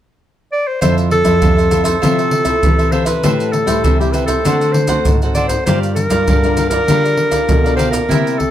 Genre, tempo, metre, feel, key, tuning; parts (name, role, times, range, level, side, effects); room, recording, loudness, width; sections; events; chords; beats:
samba and choro; 99 BPM; 4/4; straight; F major; A4 = 440 Hz
bright clarinet; melody; 0.5-8.5 s; G4 to D5; -17 LUFS; equal; plate reverb
cavaquinho; accompaniment; 0.8-8.4 s; D4 to G5; -23 LUFS; right 4 dB
nylon-string guitar; accompaniment; 0.8-8.5 s; A2 to Bb4; -21 LUFS; left 5 dB
nylon-string guitar; bass; 0.8-8.5 s; F2 to E3; -19 LUFS; equal
maracas, surdo and pandeiro; percussion; 0.8-8.5 s; -17 LUFS; equal
moderate studio reverb, RT60 0.5 s; -12 LUFS; side -11 dB against mid
0.8-8.5 A section
0.0 N.C.; 0.8 Fmaj7; 3.2 Am7; 4.5 D7; 5.7 Gm7
0.21 | 0.82 1.43 2.03 2.64 | 3.25 3.85 4.46 5.06 | 5.67 6.28 6.88 7.49 | 8.10